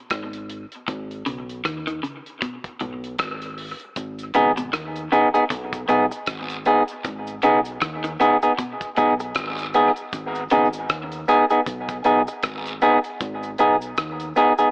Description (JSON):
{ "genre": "dub reggae", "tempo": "78 BPM", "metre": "4/4", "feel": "swing 58% on 16ths", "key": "G# minor", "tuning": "A4 = 441 Hz", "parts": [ { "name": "deep dub fingered electric bass", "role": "bass", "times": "0.1-14.3 s", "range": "G#1 to D#2", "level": "-33 LUFS", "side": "equal", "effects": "none" }, { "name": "damped 70s drum kit", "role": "drums", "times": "0.1-14.7 s", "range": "hi-hat, kick drum, rim click", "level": "-28 LUFS", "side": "equal", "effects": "dub echo" }, { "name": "electric guitar at the edge of break-up", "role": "arpeggios", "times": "0.9-10.7 s", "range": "G#2 to D#3", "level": "-31 LUFS", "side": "left 1 dB", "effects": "dub echo" }, { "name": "cabasa and guiro", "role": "percussion", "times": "4.0-14.7 s", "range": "none", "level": "-39 LUFS", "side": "right 1 dB", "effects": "dub echo" }, { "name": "semi-hollow electric guitar", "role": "accompaniment", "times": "4.3-14.7 s", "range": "B3 to G#4", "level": "-18 LUFS", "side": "equal", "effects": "dub echo" } ], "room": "moderate spring reverb, RT60 2.4 s", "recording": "AM radio sound", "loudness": "-19 LUFS", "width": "side -29 dB against mid", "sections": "0.0-14.7 A section", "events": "break 0.0-4.0", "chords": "0.0 G#m" }